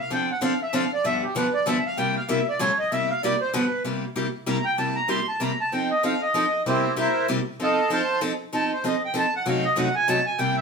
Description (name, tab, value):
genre	jazz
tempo	192 BPM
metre	3/4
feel	swing 58% on 8ths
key	C mixolydian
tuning	A4 = 439 Hz
part	accordion	melody	0.0-10.6 s	C4 to C6	-23 LUFS	right 1 dB	none
part	picked steel-string acoustic guitar	accompaniment	0.1-10.6 s	F#2 to A4	-25 LUFS	left 1 dB	none
room	wet studio reverb, RT60 0.7 s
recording	band playing live in one room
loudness	-21 LUFS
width	side -5 dB against mid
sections	0.0-3.8 A section; 3.8-10.6 A section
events	accordion solo 0.0-10.6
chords	0.1 Dm7; 1.0 G7; 2.0 C7; 2.6 Aaug7; 2.9 C7; 3.5 G7; 3.8 C7; 5.7 F7; 6.7 C7; 7.6 F7; 9.5 F#dim7